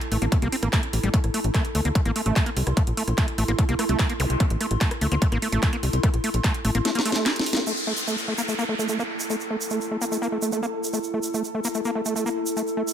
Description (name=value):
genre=psychedelic trance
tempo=147 BPM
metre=4/4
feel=straight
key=A phrygian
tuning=A4 = 444 Hz
part: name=techno drum kit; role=drums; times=0.0-7.6 s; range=handclaps, hi-hat, rim click, snare drum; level=-28 LUFS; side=equal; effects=overdrive, low-pass filter on hats, small room ambience, low-pass filter on snare
part: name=warbly tape-like pad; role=texture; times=0.0-12.9 s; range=E4 to C6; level=-31 LUFS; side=equal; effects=chorus, built-in reverb, sidechain pumping
part: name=overdriven acid bass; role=riff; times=0.1-12.8 s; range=G3 to E4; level=-28 LUFS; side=equal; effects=distortion, auto-pan, sidechain pumping, digital delay
part: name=tight sequencer bass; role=bass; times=0.1-6.8 s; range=A1 to D2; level=-24 LUFS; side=equal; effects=none
part: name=electronic kick drum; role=drums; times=0.3-6.5 s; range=none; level=-22 LUFS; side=equal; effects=distortion, overdrive, small room ambience
part: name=zap and downlifter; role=sound effects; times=4.2-4.3, 7.7-10.9 s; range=none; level=-31 LUFS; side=equal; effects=none
part: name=tube shaker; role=percussion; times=7.7-12.9 s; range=none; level=-32 LUFS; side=right 5 dB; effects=none
room=light reverb, digital ambience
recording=none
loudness=-22 LUFS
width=side -9 dB against mid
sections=0.0-7.7 A section; 7.7-12.9 B section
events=drum fill 6.9-7.7; band accent 7.5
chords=0.0 A5